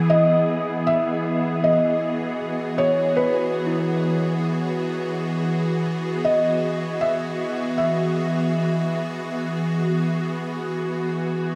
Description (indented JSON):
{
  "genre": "ambient",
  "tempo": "78 BPM",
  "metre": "4/4",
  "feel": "straight",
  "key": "E major",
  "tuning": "A4 = 440 Hz",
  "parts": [
    { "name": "evolving wavetable pad", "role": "sustained chords", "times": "0.0-11.6 s", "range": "E3 to G#4", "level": "-25 LUFS", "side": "equal", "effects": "ensemble chorus, built-in reverb" },
    { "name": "worn celesta", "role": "arpeggios", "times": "0.0-11.6 s", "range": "E4 to F#5", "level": "-38 LUFS", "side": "equal", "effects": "none" },
    { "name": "felt-muted upright piano", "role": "melody", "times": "0.1-11.6 s", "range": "B4 to E5", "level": "-26 LUFS", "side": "equal", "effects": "diffuse ambient delay" }
  ],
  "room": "wet huge ambient reverb, RT60 7.4 s",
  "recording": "none",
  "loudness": "-23 LUFS",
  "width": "mono",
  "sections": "0.1-11.6 A section",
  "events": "none",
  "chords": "0.1 Emaj7",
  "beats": "| 0.11 0.88 1.65 2.41 | 3.18 3.95 4.72 5.49 | 6.26 7.03 7.80 8.57 | 9.34 10.11 10.88"
}